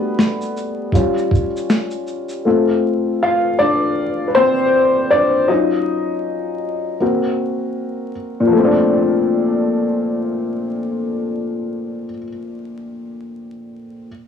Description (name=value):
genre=lo-fi hip hop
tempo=79 BPM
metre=4/4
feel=swing 56% on 16ths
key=Bb major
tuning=A4 = 440 Hz
part: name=dark upright piano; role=accompaniment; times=0.0-14.1 s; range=Bb2 to F5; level=-16 LUFS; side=left 2 dB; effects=low-pass filter
part: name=boom bap sampler-style drum kit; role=drums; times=0.2-2.4 s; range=hi-hat, kick drum, shaker, snare drum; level=-17 LUFS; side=equal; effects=vintage 12-bit sampler grit
room=moderate studio reverb, RT60 0.5 s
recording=home recording on cassette, vinyl crackle, small room ambience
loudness=-15 LUFS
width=side -7 dB against mid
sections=0.0-8.5 A section; 8.5-11.6 B section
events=upright piano solo 0.0-8.5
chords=0.0 Gmaj9; 0.9 Db; 2.5 Dm7; 5.5 Ebm7; 7.0 Bbsus2; 8.5 Bbmaj9